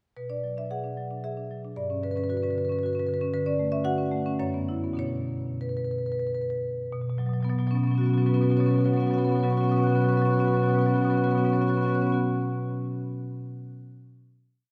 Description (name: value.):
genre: classical, contemporary piece for solo marimba.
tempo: 87-117 BPM.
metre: 3/4.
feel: rubato.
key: B minor.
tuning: A4 = 440 Hz.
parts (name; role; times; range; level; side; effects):
marimba with medium hard mallets; solo; 0.2-12.2 s; F#2 to F#6; -27 LUFS; equal; none.
room: wet church reverb, RT60 2.8 s.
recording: recorded in a church or concert hall.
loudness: -26 LUFS.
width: mono.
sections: 0.2-6.9 A section; 6.9-10.7 final chord.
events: slowing down 2.6-6.9.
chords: 0.2 Bm6; 1.8 Gmaj7#11; 3.3 Dmaj7; 4.4 F#7sus4; 5.0 Bmadd9; 6.9 Bsus2.